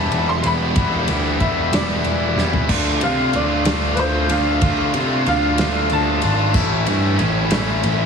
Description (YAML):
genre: indie rock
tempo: 62 BPM (dotted quarters)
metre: 6/8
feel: straight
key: D dorian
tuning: A4 = 440 Hz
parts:
  - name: bright upright piano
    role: melody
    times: 0.0-7.8 s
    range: B4 to C6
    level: -24 LUFS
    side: left 2 dB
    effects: tape echo
  - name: biting overdriven guitar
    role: riff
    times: 0.0-8.1 s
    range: A2 to F4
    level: -20 LUFS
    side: equal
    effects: none
  - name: fuzz picked electric bass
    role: bass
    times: 0.0-8.1 s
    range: E1 to C3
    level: -21 LUFS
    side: equal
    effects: overdrive
  - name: loose indie drum kit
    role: drums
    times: 0.1-8.0 s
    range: crash cymbal, kick drum, ride cymbal, snare drum, toms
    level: -24 LUFS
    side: equal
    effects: none
room: light reverb, studio reverb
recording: heavily compressed radio sound, small room reverb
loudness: -16 LUFS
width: side -6 dB against mid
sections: 0.0-2.7 A section; 2.7-8.1 B section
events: drum fill 2.4-2.7; upright piano solo 2.7-8.1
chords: 0.0 Em7; 2.7 Dm7; 6.6 A